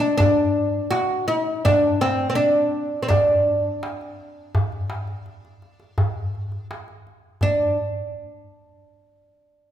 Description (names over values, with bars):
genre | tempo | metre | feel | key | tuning
Arabic maqam ensemble | 83 BPM | 4/4 | straight | unclear | A4 = 440 Hz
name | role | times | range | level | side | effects
oud | melody | 0.0-7.8 s | C4 to F#4 | -19 LUFS | equal | none
darbuka | percussion | 0.2-7.8 s | none | -24 LUFS | equal | none
room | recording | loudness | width
wet recital hall reverb, RT60 1.6 s | minimal, uncompressed stereo recording | -19 LUFS | side -10 dB against mid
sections
0.0-7.4 A section; 7.4-9.7 B section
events
none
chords
none